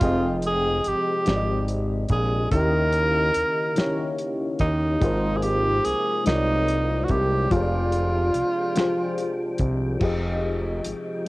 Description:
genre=slow six-eight R&B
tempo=48 BPM (dotted quarters)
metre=6/8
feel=straight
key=F minor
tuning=A4 = 440 Hz
part: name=breathy tenor saxophone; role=melody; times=0.0-9.6 s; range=Eb4 to Bb4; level=-24 LUFS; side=right 1 dB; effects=cassette tape
part: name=FM electric piano with tremolo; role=accompaniment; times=0.0-11.3 s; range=Eb3 to G5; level=-27 LUFS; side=left 2 dB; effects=cassette tape
part: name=tonewheel organ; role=sustained chords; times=0.0-11.3 s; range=C3 to G5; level=-37 LUFS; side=right 1 dB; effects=overdrive, chorus vibrato, slow rotary speaker, cassette tape
part: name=fat analog bass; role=bass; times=0.0-10.9 s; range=F1 to Eb2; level=-25 LUFS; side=equal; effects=none
part: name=cloth-damped thuddy drum kit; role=drums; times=0.0-11.0 s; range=crash cymbal, hi-hat, kick drum, snare drum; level=-26 LUFS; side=equal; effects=cassette tape
room=studio reverb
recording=home recording on cassette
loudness=-21 LUFS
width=side -20 dB against mid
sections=0.0-10.0 A section; 10.0-11.3 B section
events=none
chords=0.0 Fm9; 2.5 Eb7b9; 5.0 Ab69; 7.5 Fm69; 10.0 Fm9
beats=| 0.02 1.27 | 2.52 3.77 | 5.02 6.27 | 7.52 8.77 | 10.02 11.27

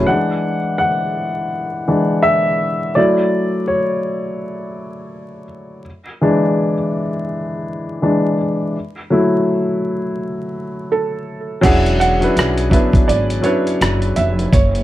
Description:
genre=lo-fi hip hop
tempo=83 BPM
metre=4/4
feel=swing 60% on 16ths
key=unclear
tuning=A4 = 440 Hz
part: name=warm upright piano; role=accompaniment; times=0.0-14.5 s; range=E3 to F#5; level=-17 LUFS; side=left 1 dB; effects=low-pass filter
part: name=felt-muted upright piano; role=melody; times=10.9-14.8 s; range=A4 to F#5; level=-20 LUFS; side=right 4 dB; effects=low-pass filter, analog delay
part: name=upright bass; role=bass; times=11.6-14.8 s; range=E1 to B1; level=-19 LUFS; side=equal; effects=none
part: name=dusty soul sampler-style drum kit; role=drums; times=11.6-14.8 s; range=crash cymbal, hi-hat, kick drum, rim click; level=-16 LUFS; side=equal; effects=none
room=moderate studio reverb, RT60 0.6 s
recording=vinyl crackle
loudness=-15 LUFS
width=side -14 dB against mid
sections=0.1-11.6 A section; 11.6-14.8 B section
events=upright piano solo 0.1-11.6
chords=0.1 E9; 3.0 F#m7; 5.8 E7; 8.7 F#m7; 11.6 E13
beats=| 0.07 0.79 1.51 2.23 | 2.96 3.68 4.40 5.12 | 5.85 6.57 7.29 8.02 | 8.74 9.46 10.19 10.91 | 11.63 12.35 13.08 13.80 | 14.52

